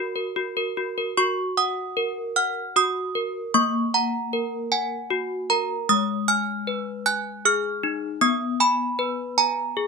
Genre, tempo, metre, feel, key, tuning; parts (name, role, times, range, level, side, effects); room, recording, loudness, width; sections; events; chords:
classical, lullaby for handbells; 51 BPM (dotted quarters); 6/8; straight; F# major; A4 = 440 Hz
desk bells; solo; 0.0-9.9 s; G#3 to F#6; -22 LUFS; equal
moderate studio reverb, RT60 0.6 s; minimal, uncompressed stereo recording; -21 LUFS; side -4 dB against mid
0.0-1.2 A section; 1.2-9.9 B section
0.0 F#; 3.5 F#/A#; 5.9 G#m; 8.2 G#m/B